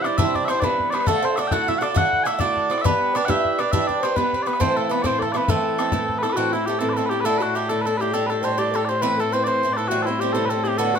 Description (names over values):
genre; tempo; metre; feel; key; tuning
celtic folk, Celtic slide; 136 BPM (dotted quarters); 12/8; straight; A dorian; A4 = 440 Hz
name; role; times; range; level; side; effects
mellow small bagpipes; melody; 0.0-11.0 s; E4 to G#5; -23 LUFS; equal; none
Irish bouzouki; second line; 0.0-6.0 s; A3 to F#4; -28 LUFS; right 4 dB; none
mellow baroque flute; second line; 0.0-11.0 s; E4 to F#5; -27 LUFS; left 6 dB; none
picked swing-style acoustic guitar; accompaniment; 0.0-11.0 s; A2 to C5; -25 LUFS; right 5 dB; none
bodhran; percussion; 0.0-6.4 s; none; -25 LUFS; left 4 dB; none
clear cello; drone; 6.4-11.0 s; A2; -29 LUFS; left 1 dB; none
room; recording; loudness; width
moderate studio reverb, RT60 0.6 s; minimal, uncompressed stereo recording; -19 LUFS; side -7 dB against mid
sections
0.0-6.4 A section; 6.4-11.0 B section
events
none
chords
0.0 Cadd9; 1.1 Dadd9; 2.8 G; 4.6 Am; 7.2 Dsus2/A; 8.1 Gsus2; 9.0 Amadd9; 9.9 C